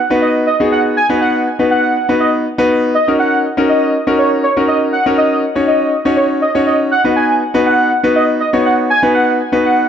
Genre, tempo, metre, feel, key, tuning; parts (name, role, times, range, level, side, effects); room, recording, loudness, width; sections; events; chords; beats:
pop; 121 BPM; 4/4; straight; A4 = 440 Hz
octave-doubled lead; melody; 0.0-9.9 s; C#5 to G#5; -14 LUFS; right 2 dB; chorus, digital delay
clear concert grand piano; accompaniment; 0.1-9.9 s; B3 to C#5; -14 LUFS; left 1 dB
moderate plate reverb, RT60 3.2 s; dark, warm production; -11 LUFS; side -8 dB against mid
0.0-9.9 A section
0.0 B; 2.9 F#6; 6.9 B
0.47 | 0.96 1.46 1.96 2.45 | 2.95 3.44 3.94 4.43 | 4.93 5.43 5.92 6.42 | 6.91 7.41 7.91 8.40 | 8.90 9.39